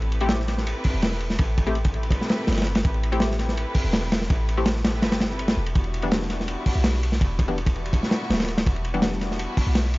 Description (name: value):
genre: drum and bass, jungle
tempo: 165 BPM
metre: 4/4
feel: straight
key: unclear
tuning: A4 = 439 Hz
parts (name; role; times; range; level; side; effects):
- dark chamber string section; sustained chords; 0.0-10.0 s; G3 to B4; -33 LUFS; equal; vintage 12-bit sampler grit
- warm 808-style bass; bass; 0.0-10.0 s; D1 to B1; -26 LUFS; equal; none
- crunchy breakbeat drum kit; drums; 0.0-10.0 s; hi-hat, kick drum, ride cymbal, snare drum; -23 LUFS; equal; none
- filtered dub chord stab; stabs; 0.2-10.0 s; E3 to G4; -30 LUFS; left 2 dB; analog chorus, dub echo
room: small room ambience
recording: dry, gritty hardware recording, transformer saturation, vinyl crackle, nothing above 7.6 kHz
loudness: -21 LUFS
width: side -21 dB against mid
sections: 0.0-10.0 A section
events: none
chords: 0.0 Am7; 5.8 Em7